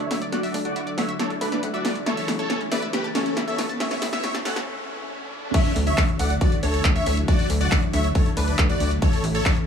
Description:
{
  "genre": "uplifting trance",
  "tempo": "138 BPM",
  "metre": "4/4",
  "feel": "straight",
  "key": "D major",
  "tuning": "A4 = 440 Hz",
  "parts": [
    { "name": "big supersaw lead", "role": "melody", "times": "0.0-9.6 s", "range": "C#4 to F#5", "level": "-28 LUFS", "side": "equal", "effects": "phaser, sidechain pumping, low-pass filter, dub echo" },
    { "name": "lush unison pad", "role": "sustained chords", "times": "0.0-9.7 s", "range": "C#3 to E4", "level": "-31 LUFS", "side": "left 1 dB", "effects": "chorus, sidechain pumping" },
    { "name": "analog pluck", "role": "arpeggios", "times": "0.0-4.6 s", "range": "C#4 to C#6", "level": "-33 LUFS", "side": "right 2 dB", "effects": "chorus, sidechain pumping, digital delay" },
    { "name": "tight sequencer bass", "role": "bass", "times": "0.0-9.4 s", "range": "A1 to D2", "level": "-26 LUFS", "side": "equal", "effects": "sidechain pumping, high-pass filter" },
    { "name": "punchy analog drum machine", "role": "drums", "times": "0.0-9.7 s", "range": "crash cymbal, handclaps, hi-hat, snare drum", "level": "-28 LUFS", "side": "equal", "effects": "sidechain pumping on hats, sidechain pumping on cymbals" },
    { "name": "riser", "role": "sound effects", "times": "1.0-5.5 s", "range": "none", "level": "-35 LUFS", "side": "right 2 dB", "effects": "none" },
    { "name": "plucky unison lead", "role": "second line", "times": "5.5-9.6 s", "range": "B4 to F#5", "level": "-31 LUFS", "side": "left 1 dB", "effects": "analog chorus, sidechain pumping, digital delay" },
    { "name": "electronic kick drum", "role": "drums", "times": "5.5-9.5 s", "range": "none", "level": "-21 LUFS", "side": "left 1 dB", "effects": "overdrive" }
  ],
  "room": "light reverb",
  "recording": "high-pass filter, small room ambience",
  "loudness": "-20 LUFS",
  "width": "side -7 dB against mid",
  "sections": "0.0-5.5 A section; 5.5-9.7 B section",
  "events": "build-up 0.0-5.5; drum fill 0.0-4.7; filter sweep on supersaw synth 0.0-5.5; filter sweep 0.0-5.5; riser 1.0-5.5; break 4.7-5.5; drop 5.5-9.7",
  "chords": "0.0 Dadd9; 2.1 A; 5.5 Dadd9; 9.0 A"
}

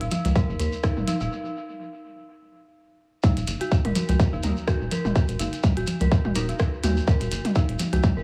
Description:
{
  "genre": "minimal techno",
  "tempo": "125 BPM",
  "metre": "4/4",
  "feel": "swing 56% on 16ths",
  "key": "Eb minor",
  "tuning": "A4 = 440 Hz",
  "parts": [
    { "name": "dark detuned synth bell", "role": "riff", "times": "0.0-8.2 s", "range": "Eb4 to Bb4", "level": "-34 LUFS", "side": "equal", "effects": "chorus, vintage 12-bit sampler grit, sidechain pumping, analog delay" },
    { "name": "rubbery square bass", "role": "bass", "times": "0.0-8.2 s", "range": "Eb1 to Eb2", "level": "-28 LUFS", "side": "equal", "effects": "sidechain pumping" },
    { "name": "minimal click drum kit", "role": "drums", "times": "0.0-8.0 s", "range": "hi-hat, rim click", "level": "-36 LUFS", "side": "equal", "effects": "dub echo" },
    { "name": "electronic congas and toms", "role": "percussion", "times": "0.1-8.1 s", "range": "none", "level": "-31 LUFS", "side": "equal", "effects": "analog delay" },
    { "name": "shekere", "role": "percussion", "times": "0.1-8.1 s", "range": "none", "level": "-40 LUFS", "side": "equal", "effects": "dub echo" },
    { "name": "electronic kick drum", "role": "drums", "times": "0.4-8.1 s", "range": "none", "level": "-23 LUFS", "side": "equal", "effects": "none" },
    { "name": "wavetable chord stab", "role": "stabs", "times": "4.4-6.5 s", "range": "Bb3 to Bb4", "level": "-39 LUFS", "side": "equal", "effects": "none" }
  ],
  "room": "little or no reverb",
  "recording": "echo-heavy mix, small room ambience",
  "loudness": "-24 LUFS",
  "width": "mono",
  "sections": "0.0-3.2 A section; 3.2-8.2 B section",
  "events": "break 1.3-3.2; drop 3.2-8.2",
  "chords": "0.0 Eb5"
}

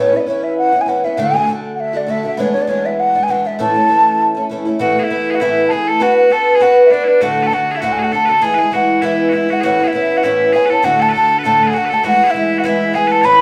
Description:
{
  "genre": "celtic folk",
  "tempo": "199 BPM",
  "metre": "4/4",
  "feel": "swing 55% on 8ths",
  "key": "A major",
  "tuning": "A4 = 440 Hz",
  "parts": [
    { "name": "breathy mellow wooden flute", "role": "melody", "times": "0.0-13.4 s", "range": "C#5 to B5", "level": "-17 LUFS", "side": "equal", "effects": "none" },
    { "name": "picked twelve-string acoustic guitar", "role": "accompaniment", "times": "0.0-13.4 s", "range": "D2 to B4", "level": "-18 LUFS", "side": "equal", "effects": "none" },
    { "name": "loud bright bagpipes", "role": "second line", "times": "4.8-13.4 s", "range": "D4 to C#5", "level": "-22 LUFS", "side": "equal", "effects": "none" }
  ],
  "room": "moderate large studio reverb, RT60 1.0 s",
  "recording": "band playing live in one room",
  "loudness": "-14 LUFS",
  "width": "mono",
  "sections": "0.0-4.8 A section; 4.8-13.4 B section",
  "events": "none",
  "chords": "0.0 Aadd9; 1.2 D; 2.4 E7; 3.6 A; 4.8 Asus2; 6.0 Bm; 7.2 D; 8.4 E; 9.6 Aadd9; 10.8 D; 12.0 E"
}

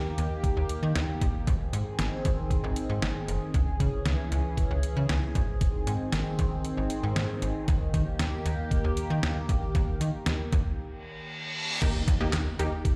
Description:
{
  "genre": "synth-pop",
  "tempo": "116 BPM",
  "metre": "4/4",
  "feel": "straight",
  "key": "unclear",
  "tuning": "A4 = 440 Hz",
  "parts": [
    { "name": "phased analog pad", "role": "sustained chords", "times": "0.0-11.8 s", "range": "Eb3 to Ab4", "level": "-36 LUFS", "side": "equal", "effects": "phaser, chorus" },
    { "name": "slap-like FM bass", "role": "bass", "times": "0.0-12.7 s", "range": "F1 to Eb3", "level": "-31 LUFS", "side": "equal", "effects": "none" },
    { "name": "detuned 8-bit digital drum machine", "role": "drums", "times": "0.2-13.0 s", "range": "crash cymbal, handclaps, hi-hat, kick drum, snare drum", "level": "-31 LUFS", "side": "equal", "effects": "none" },
    { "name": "reverse cymbal and impact", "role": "sound effects", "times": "11.0-13.0 s", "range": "none", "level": "-36 LUFS", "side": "equal", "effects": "none" },
    { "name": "unison pluck", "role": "accompaniment", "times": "11.8-13.0 s", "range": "Bb3 to G4", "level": "-34 LUFS", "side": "equal", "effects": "subtle chorus" }
  ],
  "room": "light reverb, digital ambience",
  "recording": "played on a big sound system in a bare room, large studio reverb",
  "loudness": "-28 LUFS",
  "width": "mono",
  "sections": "0.0-11.8 A section; 11.8-13.0 B section",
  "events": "break 10.8-11.8; reverse cymbal 11.0-11.8; impact 11.8-13.0",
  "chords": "0.0 Eb; 1.5 Ab; 3.5 Dbm; 5.4 Ab; 7.7 Eb"
}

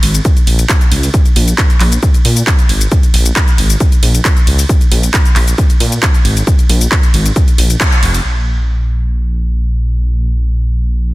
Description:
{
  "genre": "driving peak-time techno",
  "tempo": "135 BPM",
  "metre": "4/4",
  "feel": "straight",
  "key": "Bb minor",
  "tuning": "A4 = 440 Hz",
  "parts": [
    { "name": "dark detuned saw bass", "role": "bass", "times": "0.0-11.1 s", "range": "F1 to Bb2", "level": "-12 LUFS", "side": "equal", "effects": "sidechain pumping" },
    { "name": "techno drum kit", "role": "drums", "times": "0.0-8.2 s", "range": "handclaps, hi-hat, ride cymbal, shaker", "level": "-16 LUFS", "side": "equal", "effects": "sidechain pumping on hats, sidechain pumping on cymbals, sidechain pumping on perc" },
    { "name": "electronic kick drum", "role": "drums", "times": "0.2-7.9 s", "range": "none", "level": "-10 LUFS", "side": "equal", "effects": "none" }
  ],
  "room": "little or no reverb",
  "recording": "dense, heavily limited modern master",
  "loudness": "-9 LUFS",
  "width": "side -19 dB against mid",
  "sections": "0.0-8.2 A section; 8.2-11.1 B section",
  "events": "drop 0.0-8.2; band accent 7.8",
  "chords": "none"
}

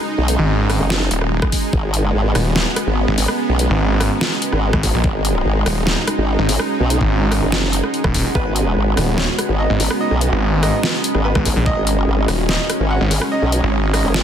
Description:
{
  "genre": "heavy wobble dubstep",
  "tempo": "145 BPM",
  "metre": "4/4",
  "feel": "half-time",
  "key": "G# minor",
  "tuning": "A4 = 437 Hz",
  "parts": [
    { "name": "supersaw pad", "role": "sustained chords", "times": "0.0-14.2 s", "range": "G#3 to D#4", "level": "-24 LUFS", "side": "right 2 dB", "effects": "sidechain pumping" },
    { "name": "deep dark ambient pad", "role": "texture", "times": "0.0-14.2 s", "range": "C#4 to A#5", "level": "-25 LUFS", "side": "right 2 dB", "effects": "chorus, built-in reverb, sidechain pumping" },
    { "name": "formant-sweep wobble bass", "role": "bass", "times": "0.2-14.2 s", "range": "F#1 to B1", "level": "-18 LUFS", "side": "equal", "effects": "chorus, overdrive" },
    { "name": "dubstep drum kit", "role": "drums", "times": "0.3-14.2 s", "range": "hi-hat, rim click, snare drum", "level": "-21 LUFS", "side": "equal", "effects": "overdrive" },
    { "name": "snarling distorted saw bass", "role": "bass", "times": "0.4-14.0 s", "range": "D#1 to A#1", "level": "-18 LUFS", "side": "equal", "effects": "distortion, overdrive" },
    { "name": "electronic kick drum", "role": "drums", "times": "1.4-1.8, 4.7-8.4, 11.4-11.7 s", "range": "none", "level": "-20 LUFS", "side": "equal", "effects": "overdrive" },
    { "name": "bright baby grand piano", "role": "melody", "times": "8.4-14.2 s", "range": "B3 to F#5", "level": "-25 LUFS", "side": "right 1 dB", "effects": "ping-pong delay" }
  ],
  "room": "digital ambience",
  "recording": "dense, heavily limited modern master",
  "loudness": "-15 LUFS",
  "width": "side -9 dB against mid",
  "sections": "0.0-14.2 A section",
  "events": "none",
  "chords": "0.0 G#madd9"
}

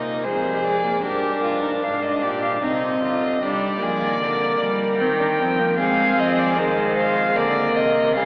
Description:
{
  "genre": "classical, baroque-style fugue for string quartet",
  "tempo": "76 BPM",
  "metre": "3/4",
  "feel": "straight",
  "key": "unclear",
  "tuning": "A4 = 438 Hz",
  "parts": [
    { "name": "rich violin", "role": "melody", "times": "0.0-8.3 s", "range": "Bb4 to G5", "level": "-22 LUFS", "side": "equal", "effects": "none" },
    { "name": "dark violin", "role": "second line", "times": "0.0-8.3 s", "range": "D4 to C5", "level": "-24 LUFS", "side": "equal", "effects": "none" },
    { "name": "rich viola", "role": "accompaniment", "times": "0.0-8.3 s", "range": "G3 to D4", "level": "-24 LUFS", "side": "equal", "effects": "none" },
    { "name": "rich cello", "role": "bass", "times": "0.0-8.3 s", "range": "F2 to Ab3", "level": "-28 LUFS", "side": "equal", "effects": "none" }
  ],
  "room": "wet cathedral reverb, RT60 6.3 s",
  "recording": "heard from further back in the room, AM radio sound",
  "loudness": "-18 LUFS",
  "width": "side -30 dB against mid",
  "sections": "0.0-8.3 A section",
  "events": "none",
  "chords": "0.2 Ddim/F; 1.0 Gm; 2.6 Cm; 3.4 Gm; 5.0 Cm7/Eb; 5.8 Fm; 7.4 Bb/D"
}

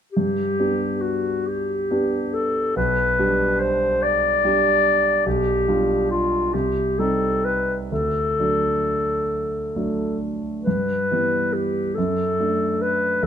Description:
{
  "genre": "classical, romantic duo for clarinet and grand piano",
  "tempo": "42-49 BPM (dotted quarters)",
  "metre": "6/8",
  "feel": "rubato",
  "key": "G major",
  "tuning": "A4 = 440 Hz",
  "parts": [
    { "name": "warm clarinet", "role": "melody", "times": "0.1-13.3 s", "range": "F4 to D5", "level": "-20 LUFS", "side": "left 1 dB", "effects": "none" },
    { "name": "warm concert grand piano", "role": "accompaniment", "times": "0.2-13.3 s", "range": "B1 to G4", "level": "-24 LUFS", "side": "right 2 dB", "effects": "none" }
  ],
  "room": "moderate recital hall reverb, RT60 1.6 s",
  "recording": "close, detailed microphones",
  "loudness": "-19 LUFS",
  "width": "side -8 dB against mid",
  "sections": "0.1-13.3 A section",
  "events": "none",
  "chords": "0.1 G; 2.8 G/B; 5.3 G7/B; 6.5 Cm; 7.9 D; 10.7 Em/G; 12.0 D/F#"
}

